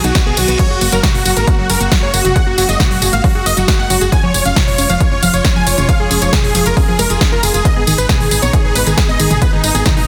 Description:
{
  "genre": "uplifting trance",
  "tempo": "136 BPM",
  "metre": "4/4",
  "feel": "straight",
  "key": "F# major",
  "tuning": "A4 = 442 Hz",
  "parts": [
    { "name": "dense compressed supersaw", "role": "melody", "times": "0.0-10.1 s", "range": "D#4 to G#5", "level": "-20 LUFS", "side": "equal", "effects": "sidechain pumping, digital delay" },
    { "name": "analog pluck", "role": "second line", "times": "0.0-10.1 s", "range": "D#4 to G#5", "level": "-28 LUFS", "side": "equal", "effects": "none" },
    { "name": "warm studio string section", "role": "sustained chords", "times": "0.0-10.1 s", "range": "B2 to F#4", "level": "-27 LUFS", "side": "equal", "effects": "sidechain pumping" },
    { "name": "analog pluck", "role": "arpeggios", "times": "0.0-10.0 s", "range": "D#3 to C#5", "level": "-24 LUFS", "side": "equal", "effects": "chorus, vintage 12-bit sampler grit, sidechain pumping, digital delay" },
    { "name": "solid FM bass", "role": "bass", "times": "0.0-10.0 s", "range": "E#1 to B1", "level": "-21 LUFS", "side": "equal", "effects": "sidechain pumping" },
    { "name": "big-room dance drum kit", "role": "drums", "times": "0.0-10.1 s", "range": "crash cymbal, hi-hat, ride cymbal, snare drum, tambourine, toms", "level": "-20 LUFS", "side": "equal", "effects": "none" },
    { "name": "reverse cymbal", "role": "sound effects", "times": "0.0-0.6 s", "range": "none", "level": "-27 LUFS", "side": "equal", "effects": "none" },
    { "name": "electronic kick drum", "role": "drums", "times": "0.2-9.9 s", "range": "none", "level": "-16 LUFS", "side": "equal", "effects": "none" }
  ],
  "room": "light reverb, digital ambience",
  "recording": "dense, heavily limited modern master",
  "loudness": "-13 LUFS",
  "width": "mono",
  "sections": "0.0-10.1 A section",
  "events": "reverse cymbal 0.0-0.6",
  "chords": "0.0 B; 0.6 F#add9; 4.1 C#/E#; 7.7 G#m"
}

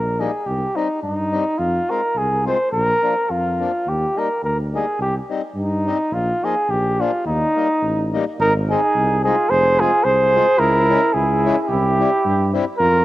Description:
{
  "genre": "alpine folk, alpine dance band",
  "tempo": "106 BPM",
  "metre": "2/4",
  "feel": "swing 54% on 8ths",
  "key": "Eb major, Ab major from 8.4 s",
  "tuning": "A4 = 440 Hz",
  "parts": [
    { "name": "warm flugelhorn", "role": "melody", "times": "0.0-13.0 s", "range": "Eb4 to C5", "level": "-18 LUFS", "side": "equal", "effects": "none" },
    { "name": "mellow tuba", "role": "bass", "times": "0.0-13.0 s", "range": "F1 to G2", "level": "-23 LUFS", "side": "equal", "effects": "none" },
    { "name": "accordion", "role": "accompaniment", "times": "0.2-12.6 s", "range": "F3 to F4", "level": "-26 LUFS", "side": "left 6 dB", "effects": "cassette tape" },
    { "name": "dark trumpet", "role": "second line", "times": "8.4-13.0 s", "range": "Eb4 to Ab4", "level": "-23 LUFS", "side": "right 5 dB", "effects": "cassette tape" }
  ],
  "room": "moderate lush hall reverb, RT60 2.6 s",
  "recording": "home recording on cassette",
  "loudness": "-16 LUFS",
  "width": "side -15 dB against mid",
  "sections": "0.0-8.4 A section; 8.4-13.0 B section",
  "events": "none",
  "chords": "0.5 Cm; 1.6 Fm; 2.7 Bb; 3.9 Eb; 5.0 Cm; 6.1 Bb7sus4; 6.7 Bb; 7.3 Eb; 8.4 Ab; 9.5 Fm; 10.6 Dbm; 11.7 C"
}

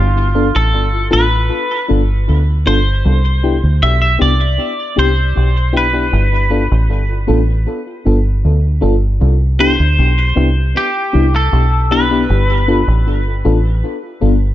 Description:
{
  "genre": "lovers rock reggae",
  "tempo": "78 BPM",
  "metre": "4/4",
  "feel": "straight",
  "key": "C major",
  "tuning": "A4 = 441 Hz",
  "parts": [
    { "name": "twangy electric guitar", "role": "melody", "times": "0.0-14.5 s", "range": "F4 to E5", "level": "-18 LUFS", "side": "equal", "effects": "analog chorus, tape echo" },
    { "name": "deep dub fingered electric bass", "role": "bass", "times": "0.0-14.5 s", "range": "G1 to D2", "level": "-13 LUFS", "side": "equal", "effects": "none" },
    { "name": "mellow FM electric piano", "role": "accompaniment", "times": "0.3-14.3 s", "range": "B3 to A4", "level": "-19 LUFS", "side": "left 2 dB", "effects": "chorus, phaser, dub echo" }
  ],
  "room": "digital ambience",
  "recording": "nothing above 7.8 kHz",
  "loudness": "-12 LUFS",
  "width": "side -13 dB against mid",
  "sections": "0.0-14.5 A section",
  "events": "none",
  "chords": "0.0 G7; 3.0 Cmaj7; 6.1 G7; 9.2 Cmaj7; 12.3 G7"
}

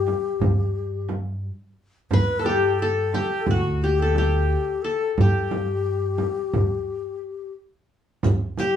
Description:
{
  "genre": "Turkish makam ensemble",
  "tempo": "176 BPM (eighths)",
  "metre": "9/8",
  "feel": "straight",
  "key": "G makam rast",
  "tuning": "A4 = 440 Hz",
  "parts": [
    { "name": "qanun", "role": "melody", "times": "0.0-8.8 s", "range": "F#4 to B4", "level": "-26 LUFS", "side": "equal", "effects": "none" },
    { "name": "breathy ney", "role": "second line", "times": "0.0-8.8 s", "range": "F#4 to B4", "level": "-26 LUFS", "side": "left 8 dB", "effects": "none" },
    { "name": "upright bass", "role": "bass", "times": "0.0-6.7 s", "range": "D2 to G2", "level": "-25 LUFS", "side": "equal", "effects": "none" },
    { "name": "darbuka", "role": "percussion", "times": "0.1-8.7 s", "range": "none", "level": "-25 LUFS", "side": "right 1 dB", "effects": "none" },
    { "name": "frame drum", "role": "percussion", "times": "0.1-8.7 s", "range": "none", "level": "-28 LUFS", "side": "right 2 dB", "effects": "none" },
    { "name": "riq", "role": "percussion", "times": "8.2-8.7 s", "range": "none", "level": "-35 LUFS", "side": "right 1 dB", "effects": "none" }
  ],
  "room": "moderate studio reverb, RT60 0.5 s",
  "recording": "band playing live in one room, small room ambience",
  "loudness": "-21 LUFS",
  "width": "side -9 dB against mid",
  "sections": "0.0-8.2 A section",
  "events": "break 6.7-8.2",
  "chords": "none"
}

